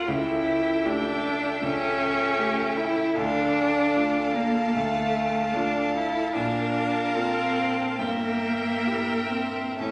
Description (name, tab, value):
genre	classical, slow romantic movement for piano quintet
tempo	61-80 BPM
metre	4/4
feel	rubato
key	D minor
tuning	A4 = 440 Hz
part	rich violin	melody	0.0-9.9 s	G5 to A5	-38 LUFS	equal	none
part	clear cello	second line	0.0-9.9 s	A3 to E4	-28 LUFS	equal	none
part	rich violin	second line	0.0-9.9 s	E5 to F5	-33 LUFS	equal	none
part	rich viola	accompaniment	0.0-9.9 s	A4 to Bb4	-36 LUFS	equal	none
part	warm grand piano	accompaniment	0.0-9.9 s	G1 to Bb4	-34 LUFS	equal	none
room	wet recital hall reverb, RT60 1.5 s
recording	none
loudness	-25 LUFS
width	mono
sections	0.0-9.9 A section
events	none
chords	0.1 A7/C#; 3.2 Dm; 6.4 Bbmaj7; 8.0 Edim/G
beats	| 0.09 0.86 1.62 2.39 | 3.17 3.96 4.75 5.56 | 6.36 7.16 7.99 8.87 | 9.78